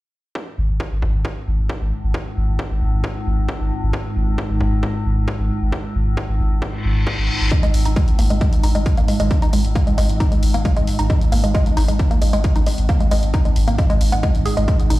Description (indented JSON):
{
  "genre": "driving peak-time techno",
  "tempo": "134 BPM",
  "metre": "4/4",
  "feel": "straight",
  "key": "unclear",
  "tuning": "A4 = 441 Hz",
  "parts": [
    { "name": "metallic inharmonic drone", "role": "drone", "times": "1.1-15.0 s", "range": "G#2", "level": "-26 LUFS", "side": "equal", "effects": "chorus, built-in reverb, sidechain pumping" },
    { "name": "electronic kick drum", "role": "drums", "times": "0.4-14.8 s", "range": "none", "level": "-19 LUFS", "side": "equal", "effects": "overdrive, high-pass filter on kick, studio reverb" },
    { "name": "warm sub bass", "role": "bass", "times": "0.6-15.0 s", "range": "G#1", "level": "-19 LUFS", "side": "equal", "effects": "overdrive, sidechain pumping, low-pass filter" },
    { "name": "reverse cymbal", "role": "sound effects", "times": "6.8-7.5 s", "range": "none", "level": "-25 LUFS", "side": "left 2 dB", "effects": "none" },
    { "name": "woody wave-folded pluck", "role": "riff", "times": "7.5-14.9 s", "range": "G#3 to G#4", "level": "-23 LUFS", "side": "right 1 dB", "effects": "chorus, sidechain pumping, ping-pong delay" },
    { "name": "techno drum kit", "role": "drums", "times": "7.5-15.0 s", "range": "hi-hat, toms", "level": "-32 LUFS", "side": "equal", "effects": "overdrive, studio reverb" }
  ],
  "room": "little or no reverb",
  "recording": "played on a big sound system in a bare room, stone room reverb",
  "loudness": "-16 LUFS",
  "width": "side -17 dB against mid",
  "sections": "0.4-7.5 A section; 7.5-15.0 B section",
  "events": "reverse cymbal 6.8-7.5; filter sweep on synth arpeggio sound 7.5-15.0",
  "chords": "none"
}